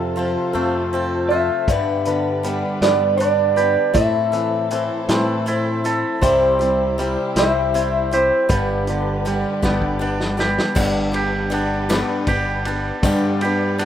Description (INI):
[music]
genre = folk rock and heartland rock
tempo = 53 BPM (dotted quarters)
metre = 6/8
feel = straight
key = unclear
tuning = A4 = 444 Hz
[part]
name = electric guitar through a small old amp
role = melody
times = 0.0-10.0 s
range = A4 to E5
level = -20 LUFS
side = right 1 dB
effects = vibrato effect
[part]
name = picked swing-style acoustic guitar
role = accompaniment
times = 0.0-13.8 s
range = G2 to B4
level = -23 LUFS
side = left 4 dB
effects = none
[part]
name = rich chamber string section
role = sustained chords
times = 0.0-13.8 s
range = D4 to D5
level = -32 LUFS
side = left 1 dB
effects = none
[part]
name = twangy electric guitar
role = riff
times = 0.0-13.8 s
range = F2 to A4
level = -23 LUFS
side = right 3 dB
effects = none
[part]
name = fingered electric bass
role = bass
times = 0.0-13.8 s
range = G1 to A2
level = -26 LUFS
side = equal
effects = none
[part]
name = vintage drum kit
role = drums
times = 1.7-13.8 s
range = crash cymbal, hi-hat, kick drum, ride cymbal, snare drum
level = -23 LUFS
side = equal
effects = none
[part]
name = tambourine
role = percussion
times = 10.8-13.8 s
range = none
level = -37 LUFS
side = right 3 dB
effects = none
[sound]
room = light reverb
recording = rough home demo mix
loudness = -17 LUFS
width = side -10 dB against mid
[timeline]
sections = 0.0-10.8 A section; 10.8-13.8 B section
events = drum fill 9.6-10.8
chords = 0.0 F; 1.7 G; 4.0 Am; 6.2 C; 8.5 G